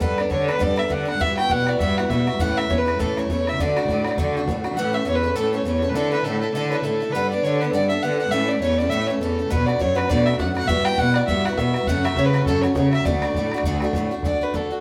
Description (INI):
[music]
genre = celtic folk, Celtic reel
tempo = 202 BPM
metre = 4/4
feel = swing 57% on 8ths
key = D major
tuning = A4 = 440 Hz
[part]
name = dark fiddle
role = melody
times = 0.0-14.8 s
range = F#4 to G5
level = -26 LUFS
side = equal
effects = none
[part]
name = picked steel-string acoustic guitar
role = accompaniment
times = 0.0-14.8 s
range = F#2 to A4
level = -27 LUFS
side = equal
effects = none
[part]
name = rich cello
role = bass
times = 0.0-14.2 s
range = D2 to E3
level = -27 LUFS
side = equal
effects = none
[part]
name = bodhran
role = percussion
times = 0.0-4.7, 9.5-14.6 s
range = none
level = -29 LUFS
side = equal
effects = none
[sound]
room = wet stone room reverb, RT60 1.0 s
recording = band playing live in one room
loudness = -21 LUFS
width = mono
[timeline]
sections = 0.0-4.8 A section; 4.8-14.2 A section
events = none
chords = 0.0 Gadd9; 1.2 Emadd9/G; 2.4 A; 3.6 D; 4.8 A; 6.0 Dsus2; 7.1 Gadd9; 8.3 A; 9.5 Bm7; 10.7 Emadd9/G; 11.9 F#m; 13.1 D